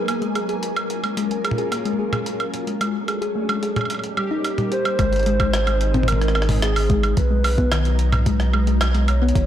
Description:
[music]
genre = IDM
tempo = 110 BPM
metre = 4/4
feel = straight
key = unclear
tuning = A4 = 440 Hz
[part]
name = warbly nostalgic lead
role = melody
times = 0.0-0.3, 4.7-9.5 s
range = Ab4 to Db5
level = -26 LUFS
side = right 1 dB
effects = chorus, tape echo
[part]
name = soft string machine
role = sustained chords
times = 0.0-9.5 s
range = Eb3 to A#5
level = -28 LUFS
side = equal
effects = phaser, ensemble chorus, vintage 12-bit sampler grit
[part]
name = thumb-piano-like synth pluck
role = arpeggios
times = 0.0-9.5 s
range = Ab2 to Ab4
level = -25 LUFS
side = left 3 dB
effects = chorus, tape echo
[part]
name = pulsing gated texture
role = texture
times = 0.0-5.0 s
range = G4 to Ab5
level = -35 LUFS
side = right 1 dB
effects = chorus, built-in reverb
[part]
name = jungle sampler-style drum kit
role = drums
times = 0.1-9.5 s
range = hi-hat, rim click, toms, woodblock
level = -25 LUFS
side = right 2 dB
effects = soft clipping on snare, digital delay
[part]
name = rubbery square bass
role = bass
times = 5.0-9.5 s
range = Gb1 to B1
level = -20 LUFS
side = equal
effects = none
[part]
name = electronic kick drum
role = drums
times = 5.0-9.5 s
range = none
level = -21 LUFS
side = equal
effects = overdrive
[sound]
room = moderate lush hall reverb, RT60 2.2 s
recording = blown-out, overdriven recording, overdrive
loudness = -18 LUFS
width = side -11 dB against mid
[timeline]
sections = 0.0-5.0 A section; 5.0-9.5 B section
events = none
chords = 0.0 Bmaj7; 0.6 Gbmaj7; 2.8 Dmaj7; 3.9 Eb7; 5.0 Ab; 7.2 Bmaj7

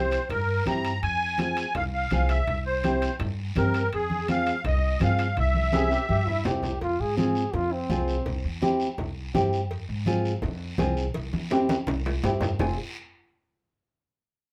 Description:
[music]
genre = latin, cumbia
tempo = 166 BPM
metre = 4/4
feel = straight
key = F harmonic minor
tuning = A4 = 440 Hz
[part]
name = musette accordion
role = melody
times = 0.0-6.4 s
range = Ab4 to Bb5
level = -29 LUFS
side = equal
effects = none
[part]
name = nylon-string guitar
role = accompaniment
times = 0.0-12.8 s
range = C4 to Ab4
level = -30 LUFS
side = equal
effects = none
[part]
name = upright bass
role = bass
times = 0.0-12.8 s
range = F1 to Ab2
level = -31 LUFS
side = equal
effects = none
[part]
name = guiro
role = percussion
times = 0.1-12.7 s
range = none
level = -45 LUFS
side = equal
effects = none
[part]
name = timbales and cowbell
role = percussion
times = 0.1-12.7 s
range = none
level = -38 LUFS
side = equal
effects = none
[part]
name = congas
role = percussion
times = 0.3-12.7 s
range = none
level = -34 LUFS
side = equal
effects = none
[part]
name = clear trombone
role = second line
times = 5.7-8.4, 12.6-12.8 s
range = C4 to Ab4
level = -32 LUFS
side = equal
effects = none
[sound]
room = moderate small room reverb, RT60 0.6 s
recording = none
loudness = -26 LUFS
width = mono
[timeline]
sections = 0.0-6.8 A section; 6.8-12.6 B section; 12.6-14.0 C section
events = drum fill 5.7-6.8, 11.2-12.6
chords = 0.0 C7; 1.0 Fm; 2.5 C7; 3.9 Fm; 5.4 C; 6.8 Fm; 8.3 C; 9.7 Fm; 11.2 C; 12.6 Fm

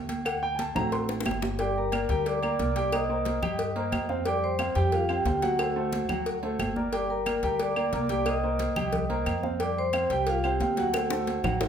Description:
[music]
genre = latin, salsa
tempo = 180 BPM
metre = 4/4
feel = straight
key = G minor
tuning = A4 = 440 Hz
[part]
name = upright bass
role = bass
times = 0.0-11.7 s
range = G1 to G2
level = -33 LUFS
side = equal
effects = none
[part]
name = agogo bells and timbales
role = percussion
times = 0.1-11.7 s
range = none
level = -37 LUFS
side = right 4 dB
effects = none
[part]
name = congas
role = percussion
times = 0.1-11.7 s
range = none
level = -36 LUFS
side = equal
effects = none
[part]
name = cowbell and bongos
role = percussion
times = 0.1-11.7 s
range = none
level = -35 LUFS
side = left 3 dB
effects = none
[part]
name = warm upright piano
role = accompaniment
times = 0.3-11.7 s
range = F#3 to C6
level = -31 LUFS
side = right 2 dB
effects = none
[part]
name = claves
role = percussion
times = 0.3-11.6 s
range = none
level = -37 LUFS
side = left 1 dB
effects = none
[part]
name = vibraphone with medium mallets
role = melody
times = 1.6-11.7 s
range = F4 to Eb6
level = -29 LUFS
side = equal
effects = none
[sound]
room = wet large studio reverb, RT60 0.8 s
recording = band playing live in one room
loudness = -25 LUFS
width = side -8 dB against mid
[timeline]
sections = 0.0-1.6 A section; 1.6-11.7 B section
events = upright piano solo 0.0-1.6; drum fill 0.8-1.6, 10.9-11.7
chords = 0.3 D7; 1.6 Gm; 2.9 Cm7; 4.3 Fsus2; 5.6 D7; 6.9 Gm; 8.3 Cm7; 9.6 Fsus2; 10.9 D7

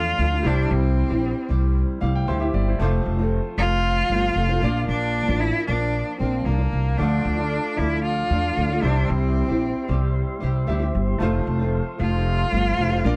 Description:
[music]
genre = acoustic pop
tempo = 114 BPM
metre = 4/4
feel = straight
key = unclear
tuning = A4 = 440 Hz
[part]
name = bright cello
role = melody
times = 0.0-13.2 s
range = Bb3 to F4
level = -27 LUFS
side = equal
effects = none
[part]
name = bright grand piano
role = accompaniment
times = 0.0-13.2 s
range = G3 to C6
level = -36 LUFS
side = equal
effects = none
[part]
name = nylon-string guitar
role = accompaniment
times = 0.0-13.2 s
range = F2 to G4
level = -30 LUFS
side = equal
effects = double-tracked
[part]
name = upright bass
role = bass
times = 0.0-13.2 s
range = F1 to E2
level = -25 LUFS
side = equal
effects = none
[part]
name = tonewheel organ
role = sustained chords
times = 7.0-13.2 s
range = G4 to D6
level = -36 LUFS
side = equal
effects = overdrive, slow rotary speaker
[sound]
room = little or no reverb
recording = dry, close 1970s-style studio recording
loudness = -22 LUFS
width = mono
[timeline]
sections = 0.0-13.2 A section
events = grand piano fill 1.8-2.8, 10.4-11.2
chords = 0.4 C; 2.8 F; 4.6 Bb; 7.0 Dm; 8.8 C; 11.2 F

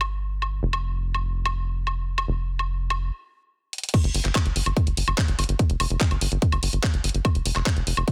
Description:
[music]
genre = psychedelic trance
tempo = 145 BPM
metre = 4/4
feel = straight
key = unclear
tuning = A4 = 440 Hz
[part]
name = tight sequencer bass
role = bass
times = 0.0-8.0 s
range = F1 to G1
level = -28 LUFS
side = equal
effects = none
[part]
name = garage drum kit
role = drums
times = 0.0-8.1 s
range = crash cymbal, handclaps, hi-hat, woodblock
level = -30 LUFS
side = equal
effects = none
[part]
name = electronic kick drum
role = drums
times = 3.9-8.1 s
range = none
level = -24 LUFS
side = equal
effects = none
[sound]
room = digital ambience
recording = dense, heavily limited modern master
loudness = -25 LUFS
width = mono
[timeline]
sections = 0.0-3.9 A section; 3.9-8.1 B section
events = stop 3.1-3.9; drum fill 3.7; drop 3.9-8.1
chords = none

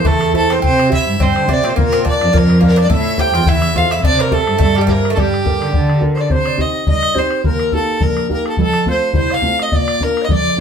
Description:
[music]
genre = celtic folk, Celtic reel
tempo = 211 BPM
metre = 4/4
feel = swing 56% on 8ths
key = G dorian, C dorian from 6.3 s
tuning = A4 = 441 Hz
[part]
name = rich fiddle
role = melody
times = 0.0-10.6 s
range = G4 to G5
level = -18 LUFS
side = equal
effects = none
[part]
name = Irish bouzouki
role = second line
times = 0.0-6.0 s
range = G3 to G4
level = -22 LUFS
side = right 4 dB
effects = none
[part]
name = bright baroque flute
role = second line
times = 0.0-10.6 s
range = G4 to G5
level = -22 LUFS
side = left 3 dB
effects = none
[part]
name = dark cello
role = bass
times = 0.0-6.2 s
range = E2 to D3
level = -17 LUFS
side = equal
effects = none
[part]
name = bodhran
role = percussion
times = 0.0-10.4 s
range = none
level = -18 LUFS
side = left 1 dB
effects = none
[part]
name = dark upright piano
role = accompaniment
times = 0.1-10.6 s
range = Bb1 to F5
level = -21 LUFS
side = right 3 dB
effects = none
[sound]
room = wet studio reverb, RT60 0.5 s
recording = band playing live in one room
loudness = -12 LUFS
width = side -7 dB against mid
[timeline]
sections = 0.0-6.3 A section; 6.3-10.6 B section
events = none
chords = 0.0 Am; 0.6 C; 1.8 Bb; 2.9 Am; 4.0 C; 5.2 Gmadd9; 6.3 Cm; 7.4 Eb; 8.6 F; 9.7 Bb

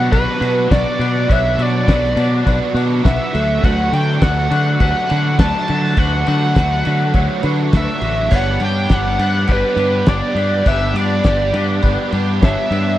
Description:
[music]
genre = indie rock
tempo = 102 BPM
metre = 4/4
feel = straight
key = D major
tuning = A4 = 439 Hz
[part]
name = overdriven synth lead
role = melody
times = 0.0-13.0 s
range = B4 to A5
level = -20 LUFS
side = equal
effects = distortion, slapback echo
[part]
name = barky tine electric piano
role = second line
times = 0.0-13.0 s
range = A4 to D5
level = -31 LUFS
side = right 6 dB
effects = phaser
[part]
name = cranked stack guitar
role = riff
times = 0.0-13.0 s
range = F#3 to G4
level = -23 LUFS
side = right 7 dB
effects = overdrive, ensemble chorus, slapback echo
[part]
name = twangy electric guitar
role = riff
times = 0.0-13.0 s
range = B2 to B4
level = -23 LUFS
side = left 10 dB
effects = phaser
[part]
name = growling fingered electric bass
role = bass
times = 0.0-13.0 s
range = G1 to D3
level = -18 LUFS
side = equal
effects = overdrive
[part]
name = cloth-damped thuddy drum kit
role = drums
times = 0.1-12.9 s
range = crash cymbal, kick drum, ride cymbal, snare drum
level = -18 LUFS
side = equal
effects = none
[sound]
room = little or no reverb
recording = dry, close 1970s-style studio recording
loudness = -13 LUFS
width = side -14 dB against mid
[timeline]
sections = 0.0-13.0 A section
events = none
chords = 0.0 Bm; 3.3 D6; 8.3 G

